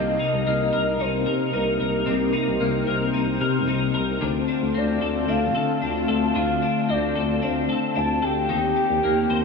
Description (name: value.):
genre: dream pop.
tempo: 112 BPM.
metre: 4/4.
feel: straight.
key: C dorian.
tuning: A4 = 440 Hz.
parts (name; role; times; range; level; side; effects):
soft octave-layered synth lead; melody; 0.0-9.4 s; Bb4 to A5; -26 LUFS; equal; chorus, tremolo, digital delay.
warm analog pad; sustained chords; 0.0-9.4 s; C3 to C5; -25 LUFS; left 1 dB; chorus.
twelve-string electric guitar; arpeggios; 0.0-9.4 s; C3 to C5; -26 LUFS; left 5 dB; ensemble chorus, digital delay.
mellow tuba; bass; 0.0-9.4 s; C2 to D3; -28 LUFS; left 2 dB; none.
room: moderate huge ambient reverb, RT60 7.4 s.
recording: small room ambience.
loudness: -20 LUFS.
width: side -4 dB against mid.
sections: 0.0-9.4 A section.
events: none.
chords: 0.0 Cm7; 4.2 Dm7; 8.5 Eb6.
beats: 0.46 0.99 1.53 | 2.07 2.60 3.14 3.67 | 4.21 4.75 5.28 5.82 | 6.35 6.89 7.42 7.96 | 8.49 9.03.